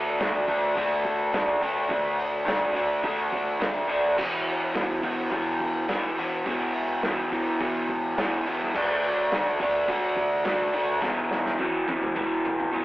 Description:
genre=garage rock duo or trio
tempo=105 BPM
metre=4/4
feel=straight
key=unclear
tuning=A4 = 439 Hz
part: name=crunchy overdriven guitar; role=riff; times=0.0-12.8 s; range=E2 to D4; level=-24 LUFS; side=equal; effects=spring reverb
part: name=vintage drum kit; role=drums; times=0.2-12.8 s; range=crash cymbal, hi-hat, kick drum, snare drum, toms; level=-31 LUFS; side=equal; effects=none
room=light reverb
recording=rough rehearsal-room recording, telephone sound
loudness=-23 LUFS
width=side -17 dB against mid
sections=0.0-12.8 A section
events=drum fill 11.0-12.8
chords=0.0 D5; 4.2 E5; 8.7 D5; 11.0 E5

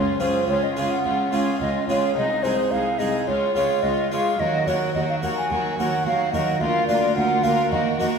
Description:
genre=classical, baroque-style concerto movement with solo episodes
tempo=108 BPM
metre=4/4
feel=straight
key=Db major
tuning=A4 = 439 Hz
part: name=mellow hollow silver concert flute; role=melody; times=0.0-8.1 s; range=C5 to Ab5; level=-23 LUFS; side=right 1 dB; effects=none
part: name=rich chamber violin section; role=melody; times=0.0-8.2 s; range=Ab4 to Db5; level=-34 LUFS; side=left 2 dB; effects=none
part: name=warm chamber violin section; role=second line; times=0.0-8.2 s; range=Eb4 to Gb4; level=-29 LUFS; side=left 2 dB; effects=none
part: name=dark chamber viola section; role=accompaniment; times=0.0-8.2 s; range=Gb3 to Db4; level=-29 LUFS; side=right 2 dB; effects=none
part: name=harpsichord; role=accompaniment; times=0.0-8.2 s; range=C2 to Db5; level=-26 LUFS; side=equal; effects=none
part: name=rich chamber cello section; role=bass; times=0.2-8.1 s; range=C2 to Eb2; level=-30 LUFS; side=right 2 dB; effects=none
room=wet recital hall reverb, RT60 1.8 s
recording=recorded in a church or concert hall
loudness=-19 LUFS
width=side -6 dB against mid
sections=0.0-8.2 A section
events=none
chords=0.0 Db; 2.2 Ab/C; 3.3 Db; 4.4 Ebm; 6.6 Bb/D

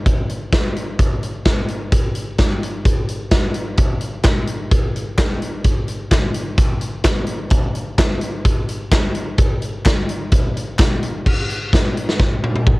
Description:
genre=rock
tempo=128 BPM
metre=4/4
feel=straight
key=none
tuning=none
part: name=big rock drum kit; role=drums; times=0.1-12.8 s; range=crash cymbal, hi-hat, kick drum, snare drum, toms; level=-16 LUFS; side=equal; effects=cassette tape
part: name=group handclap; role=percussion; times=4.2-10.9 s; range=none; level=-26 LUFS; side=left 1 dB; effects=none
room=little or no reverb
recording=home recording on cassette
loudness=-16 LUFS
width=side -22 dB against mid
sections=0.0-11.3 A section; 11.3-12.8 B section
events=drum fill 12.2-12.8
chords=none

